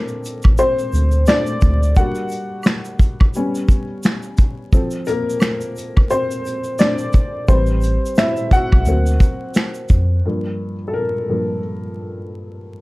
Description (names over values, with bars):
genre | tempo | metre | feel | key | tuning
lo-fi hip hop | 87 BPM | 4/4 | swing 59% on 16ths | G minor | A4 = 440 Hz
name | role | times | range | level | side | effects
dark upright piano | accompaniment | 0.0-12.8 s | G2 to F#5 | -21 LUFS | left 1 dB | cassette tape, low-pass filter
vintage brush drum kit | drums | 0.1-10.1 s | finger snaps, hi-hat, kick drum, shaker, snare drum | -15 LUFS | equal | none
egg shaker and woodblock | percussion | 0.2-10.1 s | none | -36 LUFS | right 1 dB | none
mellow tine electric piano | bass | 0.4-1.9, 7.5-10.2 s | A1 to E#2 | -17 LUFS | equal | none
room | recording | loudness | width
light reverb | vinyl crackle | -15 LUFS | side -21 dB against mid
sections
0.0-10.2 A section; 10.2-12.8 B section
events
upright piano solo 0.0-10.2, 10.2-12.8; break 2.0-7.5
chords
0.0 Bbmaj7; 2.0 Gmmaj7; 3.3 G; 4.7 Dm7; 7.5 Am9; 8.9 D7alt; 10.2 Gm7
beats
0.59 1.28 | 1.97 2.66 3.35 4.04 | 4.73 5.42 6.11 6.79 | 7.49 8.17 8.86 9.55 | 10.24 10.93 11.62 12.31